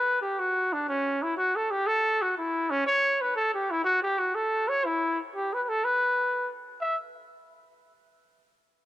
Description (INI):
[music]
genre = celtic folk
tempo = 122 BPM (dotted quarters)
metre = 6/8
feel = straight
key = E dorian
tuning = A4 = 440 Hz
[part]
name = mellow trumpet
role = solo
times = 0.0-7.0 s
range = C#4 to E5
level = -25 LUFS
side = equal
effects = none
[sound]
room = moderate plate reverb, RT60 3.6 s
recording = none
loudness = -24 LUFS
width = side -14 dB against mid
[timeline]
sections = 0.0-6.8 A section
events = none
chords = none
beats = 0.39 | 0.89 1.38 | 1.88 2.37 | 2.87 3.36 | 3.85 4.35 | 4.84 5.33 | 5.83 6.32 | 6.81